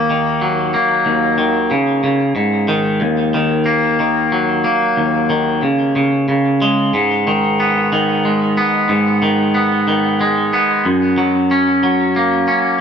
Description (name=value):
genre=rock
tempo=92 BPM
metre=3/4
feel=straight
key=Eb minor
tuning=A4 = 440 Hz
part: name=twangy electric guitar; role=solo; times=0.0-12.8 s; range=Eb2 to Db4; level=-13 LUFS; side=equal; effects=digital delay
room=light reverb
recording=dark, warm production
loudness=-13 LUFS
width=side -7 dB against mid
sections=0.0-12.8 A section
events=none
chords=0.0 Ebm; 1.7 N.C.; 2.4 Ab5; 3.0 Ebm; 5.6 N.C.; 6.3 Db5; 6.9 Abm; 10.8 Gb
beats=0.42 | 1.07 1.72 2.37 | 3.02 3.67 4.33 | 4.98 5.63 6.28 | 6.94 7.59 8.24 | 8.89 9.54 10.20 | 10.85 11.50 12.15 | 12.80